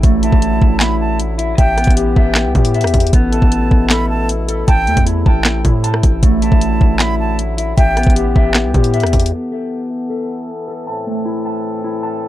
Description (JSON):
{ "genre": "hip hop, trap", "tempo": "155 BPM", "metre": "4/4", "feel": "half-time", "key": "A dorian", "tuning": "A4 = 442 Hz", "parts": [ { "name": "mellow accordion", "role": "sustained chords", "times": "0.0-12.3 s", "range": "A2 to A4", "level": "-25 LUFS", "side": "left 3 dB", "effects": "low-pass filter" }, { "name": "mellow electric guitar", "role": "arpeggios", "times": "0.0-12.3 s", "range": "A3 to A5", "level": "-19 LUFS", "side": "left 1 dB", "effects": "low-pass filter, tape echo" }, { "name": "distorted 808-style bass", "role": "bass", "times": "0.0-9.3 s", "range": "A1 to A2", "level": "-17 LUFS", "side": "equal", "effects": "distortion" }, { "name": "trap drum kit", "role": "drums", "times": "0.0-9.3 s", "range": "handclaps, hi-hat, kick drum, rim click, snare drum", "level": "-13 LUFS", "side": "equal", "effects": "vintage 12-bit sampler grit" }, { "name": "concert flute", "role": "second line", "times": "0.2-8.1 s", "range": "G5 to B5", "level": "-22 LUFS", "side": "right 2 dB", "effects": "tape echo" } ], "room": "little or no reverb", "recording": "none", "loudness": "-12 LUFS", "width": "side -14 dB against mid", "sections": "0.0-9.3 A section; 9.3-12.3 B section", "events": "none", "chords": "0.0 Dadd9/A; 1.6 Em/A; 3.1 Asus2; 4.7 C6/A; 6.2 Dadd9/A; 7.8 Em/A; 9.3 Asus2; 10.9 C6/A" }